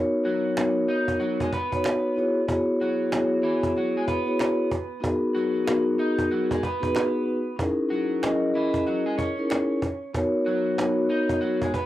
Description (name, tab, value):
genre	hip hop, boom-bap hip-hop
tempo	94 BPM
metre	4/4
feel	swing 61% on 16ths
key	B major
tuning	A4 = 441 Hz
part	vibraphone with soft mallets	accompaniment	0.0-11.7 s	B3 to D#5	-23 LUFS	equal	cassette tape, high-pass filter, low-pass filter
part	electric guitar at the edge of break-up	melody	0.2-11.9 s	E3 to D#5	-31 LUFS	equal	high-pass filter, low-pass filter, analog delay
part	cajon	drums	0.3-11.9 s	none	-30 LUFS	right 1 dB	none
part	finger snap	percussion	0.6-9.7 s	none	-39 LUFS	right 3 dB	none
room	light reverb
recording	rough home demo mix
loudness	-22 LUFS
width	side -14 dB against mid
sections	0.0-10.1 A section; 10.1-11.9 A section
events	none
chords	0.0 Bmaj9; 2.2 E69; 5.0 G#m9; 7.6 F#13; 10.1 Bmaj9